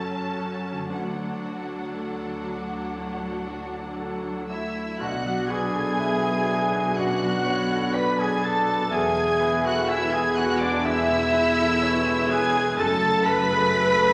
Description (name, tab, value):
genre	cinematic, emotional film score for orchestra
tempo	58-63 BPM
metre	4/4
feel	rubato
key	B dorian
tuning	A4 = 441 Hz
part	rich symphonic violin section	melody	0.0-14.1 s	F#5 to B6	-33 LUFS	equal	none
part	bright symphonic violin section	second line	0.0-14.1 s	A3 to B5	-39 LUFS	equal	none
part	bright concert grand piano	accompaniment	0.0-14.1 s	B1 to B4	-35 LUFS	equal	none
part	clear symphonic viola section	accompaniment	0.0-14.1 s	F#3 to B4	-31 LUFS	equal	none
part	concert harp	arpeggios	0.0-14.1 s	E2 to C#6	-37 LUFS	equal	none
part	rich symphonic cello section	bass	0.0-14.1 s	D2 to B2	-35 LUFS	equal	none
part	hollow flute section	second line	4.5-14.1 s	D5 to B5	-30 LUFS	equal	none
part	warm oboe	second line	4.5-14.1 s	D4 to B4	-34 LUFS	equal	none
part	mellow clarinet	second line	5.0-14.1 s	A4 to G#5	-33 LUFS	equal	none
part	dark French horn section	sustained chords	5.0-14.1 s	A3 to A4	-32 LUFS	equal	none
part	clear symphonic double bass section	bass	5.0-14.1 s	E1 to B1	-40 LUFS	equal	none
room	wet scoring stage reverb, RT60 1.6 s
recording	none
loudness	-24 LUFS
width	mono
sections	0.0-5.0 A section; 5.0-14.1 A section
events	none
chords	0.0 F#m; 0.9 D; 5.0 Bm; 8.9 E; 12.8 F#m